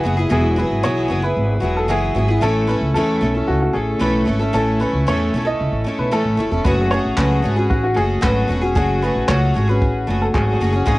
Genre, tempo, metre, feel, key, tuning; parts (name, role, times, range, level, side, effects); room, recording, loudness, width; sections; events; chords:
acoustic pop; 114 BPM; 4/4; straight; A4 = 440 Hz
clear upright piano; melody; 0.0-11.0 s; F#4 to D#5; -23 LUFS; equal
picked twelve-string acoustic guitar; accompaniment; 0.0-11.0 s; G#2 to A4; -19 LUFS; equal
upright bass; bass; 0.1-11.0 s; E1 to E2; -20 LUFS; equal
compact cocktail drum kit; drums; 6.7-11.0 s; handclaps, kick drum; -21 LUFS; equal; cassette tape
light reverb; home recording on cassette; -16 LUFS; side -19 dB against mid
0.0-11.0 A section
0.0 Eadd9; 2.4 A; 6.6 F#madd9